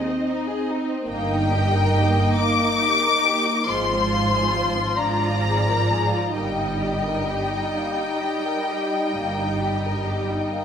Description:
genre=classical, slow romantic movement for string orchestra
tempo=42-49 BPM (dotted quarters)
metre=12/8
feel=rubato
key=Eb major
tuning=A4 = 440 Hz
part: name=warm symphonic violin section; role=melody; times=0.0-10.6 s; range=Eb5 to D6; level=-24 LUFS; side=left 4 dB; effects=none
part: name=warm symphonic violin section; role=second line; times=0.0-10.6 s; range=Ab3 to Eb5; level=-27 LUFS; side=left 2 dB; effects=none
part: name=rich studio viola section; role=accompaniment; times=0.0-10.6 s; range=F3 to F4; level=-26 LUFS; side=right 2 dB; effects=none
part: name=rich symphonic cello section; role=bass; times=1.1-10.3 s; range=G2 to Ab2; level=-27 LUFS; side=right 1 dB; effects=none
part: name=warm symphonic double bass section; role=bass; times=1.1-10.3 s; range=G1 to Ab1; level=-28 LUFS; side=right 2 dB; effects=none
room=moderate scoring stage reverb, RT60 1.7 s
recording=none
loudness=-20 LUFS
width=side -8 dB against mid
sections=0.0-10.6 A section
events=none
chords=0.0 Ab (rootless); 1.1 Eb/G; 3.7 Fm/Ab; 6.3 Eb/G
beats=| 1.10 2.40 3.69 4.99 | 6.35 7.75 9.15 10.52

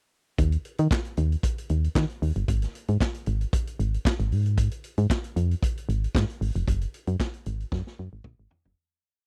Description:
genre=disco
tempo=114 BPM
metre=4/4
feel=straight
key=unclear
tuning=A4 = 439 Hz
part: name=solid FM bass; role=bass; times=0.4-8.7 s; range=F1 to Eb3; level=-26 LUFS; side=equal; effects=none
part: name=vintage drum kit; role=drums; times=0.4-8.8 s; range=handclaps, hi-hat, kick drum, snare drum, toms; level=-28 LUFS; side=equal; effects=none
room=little or no reverb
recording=dry, close 1970s-style studio recording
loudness=-27 LUFS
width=mono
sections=0.4-8.8 verse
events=fade-out 6.7-8.8; drum fill 7.7-8.8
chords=none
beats=| 0.38 0.91 1.43 1.95 | 2.48 3.00 3.53 4.05 | 4.58 5.10 5.62 6.15 | 6.67 7.20 7.72 8.25

